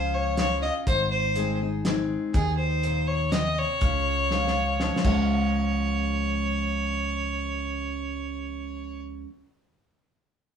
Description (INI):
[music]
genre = honky-tonk and classic country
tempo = 122 BPM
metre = 3/4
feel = straight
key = Db major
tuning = A4 = 440 Hz
[part]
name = clear fiddle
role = melody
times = 0.0-9.0 s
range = Ab4 to Eb5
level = -28 LUFS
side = equal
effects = none
[part]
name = picked steel-string acoustic guitar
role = accompaniment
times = 0.0-9.3 s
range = Ab2 to Ab4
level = -29 LUFS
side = equal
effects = none
[part]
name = fingered electric bass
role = bass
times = 0.0-9.2 s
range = Ab1 to Eb2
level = -30 LUFS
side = equal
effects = none
[part]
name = cloth-damped thuddy drum kit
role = drums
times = 0.4-5.2 s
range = crash cymbal, hi-hat, kick drum, snare drum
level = -27 LUFS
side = equal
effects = none
[sound]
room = moderate studio reverb, RT60 0.7 s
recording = band playing live in one room, studio ambience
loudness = -23 LUFS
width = side -7 dB against mid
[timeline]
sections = 0.0-5.3 A section; 5.3-8.2 B section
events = drum fill 4.3-5.3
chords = 0.0 Db; 0.9 Ab; 3.8 Db